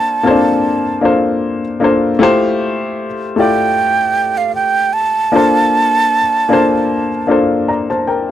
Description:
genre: soul.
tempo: 77 BPM.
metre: 4/4.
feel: swing 54% on 16ths.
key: unclear.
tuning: A4 = 440 Hz.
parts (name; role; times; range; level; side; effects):
breathy mellow silver concert flute; melody; 0.0-7.3 s; F5 to A5; -14 LUFS; right 4 dB; none.
warm baby grand piano; accompaniment; 0.0-8.3 s; A3 to Bb5; -14 LUFS; left 2 dB; none.
room: little or no reverb.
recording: dry, close 1970s-style studio recording.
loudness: -12 LUFS.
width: side -11 dB against mid.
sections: 0.0-8.3 A section.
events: none.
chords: 0.0 Bbmaj7; 2.2 Fmaj7; 5.3 Bbmaj7.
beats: 0.64 1.43 | 2.21 2.99 3.77 4.56 | 5.34 6.12 6.90 7.68.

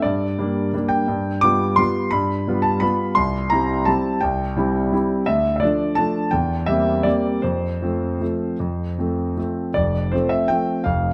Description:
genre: classical, piano waltz.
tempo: 151-179 BPM.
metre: 3/4.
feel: rubato.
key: F major.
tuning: A4 = 441 Hz.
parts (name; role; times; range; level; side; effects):
clear concert grand piano; solo; 0.0-11.1 s; F1 to D6; -21 LUFS; equal; none.
room: moderate recital hall reverb, RT60 1.7 s.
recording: close, detailed microphones.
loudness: -21 LUFS.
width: mono.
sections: 0.0-9.8 A section; 9.8-11.1 A section.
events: none.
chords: 0.0 Gm; 1.1 G7; 3.2 C; 5.3 Dm; 6.3 C7/E; 7.4 F.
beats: | 0.05 0.39 0.74 | 1.08 1.43 1.79 | 2.13 2.47 2.82 | 3.17 3.52 3.87 | 4.22 4.56 4.92 | 5.28 5.62 5.98 | 6.33 6.69 7.06 | 7.44 7.82 8.21 | 8.60 8.98 9.37 | 9.76 10.13 10.50 | 10.86.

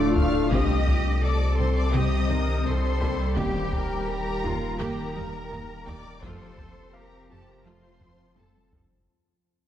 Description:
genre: cinematic, hybrid orchestral and electronic film score.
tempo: 84 BPM.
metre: 4/4.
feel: straight.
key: unclear.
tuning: A4 = 439 Hz.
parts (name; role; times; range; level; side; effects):
warm symphonic violin section; melody; 0.0-8.7 s; G5 to F6; -36 LUFS; left 4 dB; none.
warm symphonic violin section; second line; 0.0-8.7 s; G4 to F5; -35 LUFS; left 1 dB; none.
bright trombone section; sustained chords; 0.0-8.7 s; A2 to A3; -35 LUFS; right 2 dB; none.
glassy FM pad; sustained chords; 0.0-9.1 s; F3 to G5; -31 LUFS; left 1 dB; ensemble chorus, built-in reverb, phaser.
mellow French horn section; sustained chords; 0.0-8.7 s; Bb3 to C5; -34 LUFS; left 5 dB; none.
rich symphonic cello section; bass; 0.0-8.7 s; F4 to Bb4; -36 LUFS; right 1 dB; none.
warm sub bass; bass; 0.0-9.1 s; D1 to C2; -27 LUFS; equal; none.
bright grand piano; texture; 0.0-9.1 s; Bb3 to A5; -44 LUFS; left 2 dB; none.
warm symphonic viola section; accompaniment; 0.2-8.8 s; C3 to G4; -37 LUFS; right 1 dB; none.
mallet-like synth pluck; arpeggios; 0.2-8.9 s; C3 to F4; -36 LUFS; left 1 dB; none.
warm symphonic double bass section; bass; 0.2-8.8 s; C2 to F2; -35 LUFS; right 2 dB; none.
taiko ensemble; drums; 0.2-9.1 s; none; -30 LUFS; equal; none.
room: wet concert hall reverb, RT60 2.5 s.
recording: dark, warm production.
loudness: -22 LUFS.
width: side -11 dB against mid.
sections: 0.0-9.1 A section.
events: fade-out 0.0-9.1; drum fill 8.0-9.1.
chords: 0.0 Dm; 0.5 Cm; 3.4 Eb; 6.2 F.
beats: | 0.51 1.23 1.94 2.66 | 3.37 4.08 4.80 5.51 | 6.23 6.94 7.66 8.37.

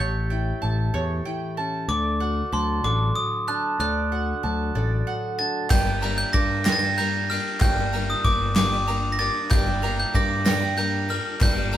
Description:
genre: indie folk with a building arrangement.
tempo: 63 BPM (dotted quarters).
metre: 6/8.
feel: straight.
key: G minor from 5.7 s.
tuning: A4 = 439 Hz.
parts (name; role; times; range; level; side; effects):
glockenspiel with brass mallets; melody; 0.0-11.8 s; C6 to Bb6; -26 LUFS; right 2 dB; none.
fingerpicked plugged-in steel-string acoustic guitar; accompaniment; 0.0-5.7 s; A2 to A4; -32 LUFS; left 2 dB; none.
mandolin; arpeggios; 0.0-11.8 s; D4 to D6; -31 LUFS; right 3 dB; none.
picked electric bass; bass; 0.0-11.8 s; G1 to G2; -26 LUFS; left 1 dB; none.
felt-muted upright piano; accompaniment; 5.7-11.8 s; G1 to F5; -37 LUFS; right 2 dB; none.
picked twelve-string acoustic guitar; accompaniment; 5.7-11.8 s; G2 to G4; -30 LUFS; left 5 dB; none.
soft brush drum kit; drums; 5.7-11.8 s; crash cymbal, kick drum, ride cymbal, snare drum; -25 LUFS; equal; none.
group handclap; percussion; 5.7-11.8 s; none; -37 LUFS; left 2 dB; none.
tambourine; percussion; 5.7-11.8 s; none; -40 LUFS; right 5 dB; none.
room: moderate studio reverb, RT60 0.5 s.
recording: band playing live in one room, faint mains hum.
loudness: -21 LUFS.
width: side -11 dB against mid.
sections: 0.0-5.7 A section; 5.7-11.8 B section.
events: none.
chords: 0.0 A7; 1.9 D; 5.7 Gm.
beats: 0.94 | 1.89 2.85 | 3.80 4.75 | 5.71 6.66 | 7.61 8.56 | 9.51 10.47 | 11.42.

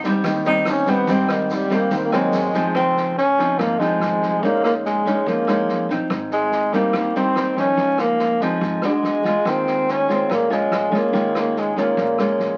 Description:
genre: bossa nova.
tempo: 143 BPM.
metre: 4/4.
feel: straight.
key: Ab major.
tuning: A4 = 440 Hz.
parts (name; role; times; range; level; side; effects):
nylon-string guitar; accompaniment; 0.0-12.6 s; Ab2 to Gb4; -24 LUFS; equal; none.
upright bass; bass; 0.0-12.6 s; Ab1 to F2; -36 LUFS; equal; none.
vintage drum kit; drums; 0.0-12.4 s; kick drum, rim click, snare drum; -33 LUFS; equal; none.
tube shaker; percussion; 0.0-2.8 s; none; -47 LUFS; equal; none.
breathy tenor saxophone; melody; 0.5-12.6 s; Eb3 to Eb4; -23 LUFS; equal; none.
warm trombone; second line; 2.1-12.6 s; Ab3 to Db4; -30 LUFS; equal; none.
room: wet studio reverb, RT60 0.6 s.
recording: very old 78 rpm record, vinyl crackle.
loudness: -20 LUFS.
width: mono.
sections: 0.0-2.8 A section; 2.8-12.6 B section.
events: tenor saxophone solo 0.0-2.8.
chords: 0.0 Abmaj7; 2.3 Ab9; 2.8 Dbmaj9; 4.4 Bbm11; 6.1 Abmaj7; 7.8 Dbmaj9; 9.0 E9; 9.5 Eb9sus4.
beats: 0.24 0.66 | 1.08 1.50 1.92 2.33 | 2.75 3.17 3.59 4.01 | 4.43 4.84 5.26 5.68 | 6.10 6.52 6.94 7.36 | 7.78 8.20 8.62 9.04 | 9.46 9.88 10.29 10.71 | 11.13 11.55 11.97 12.39.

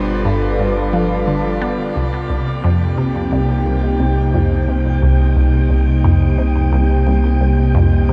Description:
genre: ambient, sequencer-driven space music.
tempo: 88 BPM.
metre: 4/4.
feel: straight.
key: C minor.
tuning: A4 = 444 Hz.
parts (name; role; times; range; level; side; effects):
breathy flute-like synth lead; melody; 0.0-1.3 s; B4; -33 LUFS; equal; lush chorus, tape echo.
sweeping resonant pad; sustained chords; 0.0-8.1 s; C3 to D5; -22 LUFS; equal; chorus.
resonant blip pluck; riff; 0.0-8.1 s; C2 to B3; -20 LUFS; equal; phaser, cassette tape, tape echo.
warm sub bass; bass; 0.0-8.1 s; G1 to C2; -20 LUFS; equal; none.
wind-like tuned noise texture; texture; 0.0-8.1 s; D5 to G5; -31 LUFS; equal; built-in reverb.
room: moderate shimmer reverb, RT60 8.4 s.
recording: dark, warm production.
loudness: -16 LUFS.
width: mono.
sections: 0.0-2.0 A section; 2.0-8.1 B section.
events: filter sweep on synth arpeggio sound 0.0-2.0.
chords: 0.0 G7; 2.0 Cm7.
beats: 0.59 1.27 | 1.96 2.64 3.32 4.00 | 4.68 5.36 6.05 6.73 | 7.41 8.09.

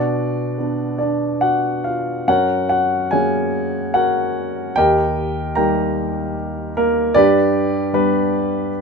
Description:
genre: classical, lyrical solo piano.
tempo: 70-78 BPM.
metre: 3/4.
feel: rubato.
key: unclear.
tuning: A4 = 441 Hz.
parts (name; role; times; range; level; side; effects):
dark baby grand piano; solo; 0.0-8.8 s; D#2 to A#5; -16 LUFS; equal; none.
room: moderate studio reverb, RT60 0.5 s.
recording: minimal, uncompressed stereo recording.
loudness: -16 LUFS.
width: side -4 dB against mid.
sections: 0.0-8.8 A section.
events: none.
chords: 0.0 Bm; 2.3 F#; 4.8 D#; 7.2 G.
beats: 0.58 1.43 | 2.28 3.12 3.95 | 4.77 5.57 6.36 | 7.15 7.94 8.72.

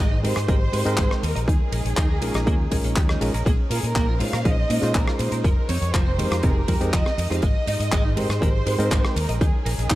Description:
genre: nu-disco, nu disco.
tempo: 121 BPM.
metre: 4/4.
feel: straight.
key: Bb dorian.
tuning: A4 = 438 Hz.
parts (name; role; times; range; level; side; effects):
rich studio violin section; melody; 0.0-10.0 s; Ab4 to F5; -30 LUFS; right 1 dB; analog delay.
lush unison pad; sustained chords; 0.0-10.0 s; Ab3 to G5; -34 LUFS; equal; chorus, phaser, sidechain pumping.
clean electric guitar; riff; 0.0-10.0 s; C3 to Eb5; -32 LUFS; right 3 dB; ensemble chorus.
fingered electric bass with an envelope filter; bass; 0.0-10.0 s; F1 to Bb2; -25 LUFS; equal; none.
barky reed electric piano; accompaniment; 0.2-9.2 s; Ab3 to G5; -28 LUFS; equal; overdrive, sidechain pumping.
damped 70s drum kit; drums; 0.2-10.0 s; handclaps, hi-hat, ride cymbal, rim click; -30 LUFS; left 1 dB; studio ambience.
electronic kick drum; drums; 0.5-10.0 s; none; -21 LUFS; equal; overdrive, studio ambience.
room: light reverb.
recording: dark, warm production.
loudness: -19 LUFS.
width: side -16 dB against mid.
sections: 0.0-10.0 A section.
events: none.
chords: 0.0 Abmaj7; 1.2 Eb7sus4; 3.5 Bbm11; 5.4 Fm11; 7.4 Abmaj7; 9.2 Eb7sus4.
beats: 0.49 0.98 | 1.48 1.97 2.47 2.96 | 3.46 3.96 4.45 4.95 | 5.45 5.94 6.44 6.93 | 7.43 7.92 8.42 8.92 | 9.41 9.91.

